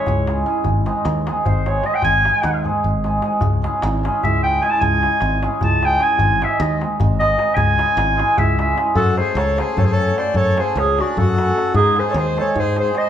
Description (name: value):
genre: balkan folk, Balkan wedding band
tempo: 303 BPM (eighths)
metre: 7/8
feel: straight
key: C# hungarian minor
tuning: A4 = 439 Hz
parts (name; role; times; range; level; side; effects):
- mellow clarinet; melody; 0.0-13.1 s; F#4 to A5; -18 LUFS; equal; none
- cimbalom; accompaniment; 0.0-13.1 s; G#3 to A4; -22 LUFS; right 2 dB; none
- modern bright fingered electric bass; bass; 0.1-12.9 s; G#1 to G#2; -22 LUFS; equal; none
- darbuka; percussion; 0.1-13.1 s; none; -23 LUFS; left 1 dB; none
- accordion; second line; 9.0-13.1 s; C#4 to B#4; -24 LUFS; left 1 dB; none
room: wet large studio reverb, RT60 1.2 s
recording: band playing live in one room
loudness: -15 LUFS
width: side -9 dB against mid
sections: 0.0-9.0 A section; 9.0-13.1 B section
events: clarinet solo 0.0-9.0; drum fill 2.6-3.4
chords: 0.0 C#m; 0.7 G#; 3.4 C#m; 6.2 G#; 7.6 C#m; 9.0 F#m; 11.7 G#